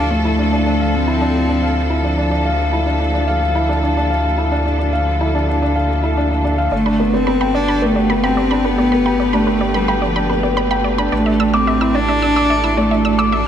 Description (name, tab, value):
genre	electronica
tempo	109 BPM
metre	4/4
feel	straight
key	D dorian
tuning	A4 = 437 Hz
part	warm cello	melody	0.0-2.0, 6.7-13.5 s	F3 to D4	-18 LUFS	right 1 dB	none
part	clear symphonic string section	sustained chords	0.0-13.5 s	D3 to B4	-23 LUFS	equal	none
part	felt-muted upright piano	riff	0.0-13.5 s	B3 to D6	-19 LUFS	left 2 dB	ping-pong delay
part	warm sub bass	bass	0.0-13.5 s	G1 to D2	-21 LUFS	equal	none
part	wide unison pluck	arpeggios	6.7-13.4 s	B4 to E6	-23 LUFS	right 3 dB	ping-pong delay
room	moderate lush hall reverb, RT60 1.8 s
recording	none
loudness	-14 LUFS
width	side -9 dB against mid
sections	0.0-13.5 A section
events	none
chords	0.0 Dmadd9; 6.7 Gadd9; 11.1 Asus4